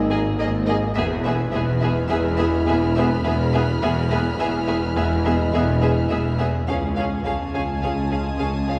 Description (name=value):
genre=cinematic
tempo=105 BPM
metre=5/4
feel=straight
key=unclear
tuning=A4 = 440 Hz
part: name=mellow French horn section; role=sustained chords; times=0.0-8.8 s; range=G#3 to F4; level=-29 LUFS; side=equal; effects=none
part: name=rich chamber double bass section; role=bass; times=0.0-8.8 s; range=E1 to Db2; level=-28 LUFS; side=equal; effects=none
part: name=warm studio cello section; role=bass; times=0.0-8.8 s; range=Db2 to Ab2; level=-29 LUFS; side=equal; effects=none
part: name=analog drone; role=drone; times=0.0-8.8 s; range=Ab1 to E2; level=-30 LUFS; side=equal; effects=chorus
part: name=rich chamber violin section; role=texture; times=0.0-8.8 s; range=Ab5 to F6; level=-37 LUFS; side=equal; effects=none
part: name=rich chamber violin section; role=melody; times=0.1-8.8 s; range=Eb5 to F5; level=-33 LUFS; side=equal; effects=none
part: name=rich chamber violin section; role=second line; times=0.1-8.8 s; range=Ab4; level=-31 LUFS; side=equal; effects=none
part: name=rich chamber viola section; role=accompaniment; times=0.1-8.8 s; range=Bb3 to Db4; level=-31 LUFS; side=equal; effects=none
room=wet concert hall reverb, RT60 2.3 s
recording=heard from further back in the room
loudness=-21 LUFS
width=mono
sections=0.0-8.8 A section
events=none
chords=0.0 Absus2; 1.0 E; 6.7 Db